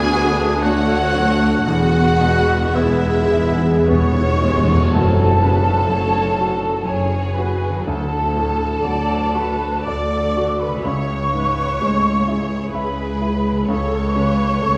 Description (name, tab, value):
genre	cinematic, emotional film score for orchestra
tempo	52-65 BPM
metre	3/4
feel	rubato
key	unclear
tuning	A4 = 440 Hz
part	warm symphonic violin section	melody	0.0-14.8 s	C#4 to G#5	-33 LUFS	equal	none
part	mellow oboe	second line	0.0-4.4 s	E4 to G#4	-27 LUFS	equal	none
part	warm symphonic violin section	second line	0.0-14.8 s	E4 to D5	-29 LUFS	equal	none
part	warm grand piano	accompaniment	0.0-14.8 s	C#2 to E5	-26 LUFS	equal	none
part	warm symphonic viola section	accompaniment	0.0-14.8 s	G#3 to D5	-28 LUFS	equal	none
part	mellow French horn section	sustained chords	0.0-4.6 s	A3 to G#4	-25 LUFS	equal	none
part	concert harp	arpeggios	0.0-14.8 s	F#2 to B5	-32 LUFS	equal	none
part	dark symphonic cello section	bass	0.0-14.8 s	C#2 to F#2	-25 LUFS	equal	none
part	warm symphonic double bass section	bass	0.0-14.8 s	E1 to D2	-27 LUFS	equal	none
part	cymbal swell and tam-tam	percussion	1.7-8.8 s	none	-31 LUFS	equal	none
part	timpani	percussion	1.7-4.9 s	E2	-24 LUFS	equal	none
part	hollow flute section	second line	3.9-14.8 s	G#5 to D6	-25 LUFS	equal	none
room	wet recital hall reverb, RT60 1.3 s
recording	none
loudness	-18 LUFS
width	mono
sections	0.0-4.9 A section; 4.9-14.8 B section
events	timpani fill 1.7-4.9; band accent 4.9-5.9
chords	0.0 D; 1.7 E; 4.9 F#madd9; 7.9 D; 10.8 C#m; 13.7 A/C#